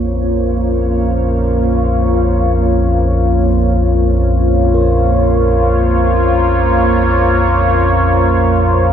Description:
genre	dark ambient drone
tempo	free time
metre	none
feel	none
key	Bb minor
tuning	A4 = 439 Hz
part	deep dark ambient pad	sustained chords	0.0-8.9 s	Bb3 to Db5	-14 LUFS	equal	chorus, built-in reverb
part	deep rumbling drone	drone	0.0-8.9 s	Bb1 to F2	-14 LUFS	equal	built-in reverb, lush chorus
part	quartz singing bowl	texture	4.7-8.9 s	Bb4	-24 LUFS	right 8 dB	none
room	wet cathedral reverb, RT60 5.3 s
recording	none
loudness	-11 LUFS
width	side -9 dB against mid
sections	0.0-8.9 A section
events	filter sweep on synth drone 0.0-8.9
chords	0.0 Bbm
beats	free time

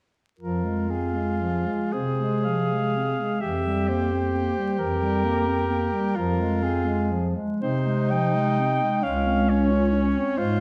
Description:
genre	classical, lyrical piece for single-reed quartet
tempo	38-45 BPM (dotted quarters)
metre	6/8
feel	rubato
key	F minor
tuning	A4 = 440 Hz
part	mellow soprano saxophone	melody	0.4-10.6 s	Ab4 to G5	-32 LUFS	equal	none
part	mellow clarinet	second line	0.4-10.6 s	E3 to F4	-30 LUFS	equal	none
part	clear tenor saxophone	accompaniment	0.4-10.6 s	Db4 to Ab4	-31 LUFS	equal	none
part	mellow bass clarinet	bass	0.4-10.6 s	Db2 to C3	-29 LUFS	equal	none
room	wet recital hall reverb, RT60 1.3 s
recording	dark, warm production, vinyl crackle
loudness	-24 LUFS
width	mono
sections	0.4-10.6 A section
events	none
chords	0.4 Fm; 3.4 C7/F; 6.2 Fm; 9.0 Dbmaj7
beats	| 0.40 1.93 | 3.41 4.78 | 6.16 7.60 | 9.04 10.38

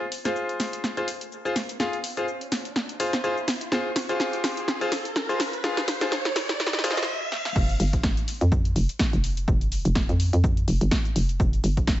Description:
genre	bass house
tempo	125 BPM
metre	4/4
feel	swing 56% on 16ths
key	F minor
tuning	A4 = 441 Hz
part	bright grand piano	stabs	0.0-6.9 s	F4 to F5	-28 LUFS	left 1 dB	sidechain pumping, low-pass filter, dub echo
part	riser	sound effects	1.1-7.6 s	none	-33 LUFS	right 1 dB	none
part	house drum kit	drums	0.1-12.0 s	crash cymbal, hi-hat, shaker, snare drum	-28 LUFS	equal	studio reverb
part	hollow knocking FM bass	bass	7.6-12.0 s	F1 to F2	-23 LUFS	equal	overdrive, sidechain pumping
part	electronic kick drum	drums	7.6-12.0 s	none	-24 LUFS	equal	studio reverb
room	light reverb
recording	high-pass filter, nothing above 7.9 kHz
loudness	-23 LUFS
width	side -14 dB against mid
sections	0.0-7.6 A section; 7.6-12.0 B section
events	build-up 0.0-7.6; drum fill 0.0-7.1, 7.3; riser 1.1-7.6; stop 7.1-7.6; drop 7.6-12.0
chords	0.0 Fm; 7.6 N.C.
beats	0.36 0.84 1.32 | 1.80 2.28 2.76 3.24 | 3.72 4.20 4.68 5.16 | 5.64 6.12 6.60 7.08 | 7.56 8.04 8.52 9.00 | 9.48 9.96 10.44 10.92 | 11.40 11.88

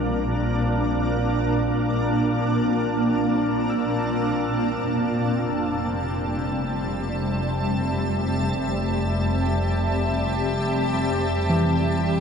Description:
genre	ambient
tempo	free time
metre	none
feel	none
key	F major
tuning	A4 = 444 Hz
part	shimmering ambient pad	sustained chords	0.0-12.2 s	Bb2 to A5	-22 LUFS	equal	chorus, built-in reverb
part	muted felt-like synth keys	arpeggios	0.0-12.2 s	E3 to E6	-32 LUFS	right 2 dB	chorus, ping-pong delay
part	rich symphonic double bass section	bass	0.0-12.2 s	F1 to Bb1	-27 LUFS	left 1 dB	none
room	wet huge ambient reverb, RT60 7.2 s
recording	in a vast, echoing space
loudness	-21 LUFS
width	side -6 dB against mid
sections	0.0-12.2 A section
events	fade-in on synth keys 0.0-12.2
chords	0.0 Bbmaj9; 4.9 Fmaj9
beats	free time

